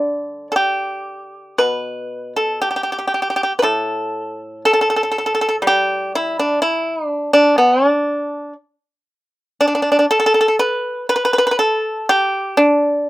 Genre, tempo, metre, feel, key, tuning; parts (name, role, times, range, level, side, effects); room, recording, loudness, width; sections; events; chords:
chinese traditional, Chinese solo plucked strings; 60 BPM; 2/4; rubato; D zhi mode; A4 = 439 Hz
pipa; solo; 0.0-13.1 s; A2 to B4; -15 LUFS; equal
light reverb; rough home demo mix; -15 LUFS; side -17 dB against mid
0.0-9.6 A section; 9.6-13.1 B section